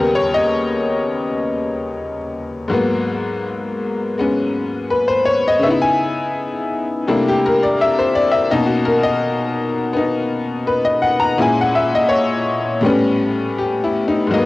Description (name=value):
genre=solo jazz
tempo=83 BPM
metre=4/4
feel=swing 68% on 8ths, rubato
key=G# minor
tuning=A4 = 440 Hz
part: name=tack piano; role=solo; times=0.0-14.5 s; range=D#2 to A#5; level=-16 LUFS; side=left 2 dB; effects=cassette tape
room=moderate studio reverb, RT60 0.5 s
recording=home recording on cassette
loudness=-16 LUFS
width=side -18 dB against mid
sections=0.0-14.3 A section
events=honky-tonk piano solo 0.0-14.3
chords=0.0 D#7b13; 2.7 G#m9; 5.6 C#m9; 7.1 C13; 8.5 Bmaj9; 11.4 A#m7b5; 12.8 A9